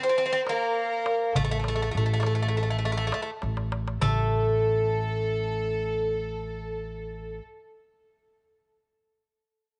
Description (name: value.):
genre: Turkish makam ensemble.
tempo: 202 BPM (eighths).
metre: 9/8.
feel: straight.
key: A makam kurdi.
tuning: A4 = 439 Hz.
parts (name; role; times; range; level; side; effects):
Greek bouzouki; melody; 0.0-7.4 s; A3 to C4; -31 LUFS; equal; none.
rich studio violin section; second line; 0.0-7.4 s; A4 to C5; -33 LUFS; equal; none.
darbuka; percussion; 0.2-4.3 s; none; -34 LUFS; equal; none.
upright bass; bass; 1.4-7.4 s; A1; -31 LUFS; equal; none.
room: moderate plate reverb, RT60 3.6 s.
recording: nothing above 10.3 kHz.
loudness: -27 LUFS.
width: mono.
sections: 0.0-4.0 A section; 4.0-6.7 B section.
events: drum fill 3.4-4.0.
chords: none.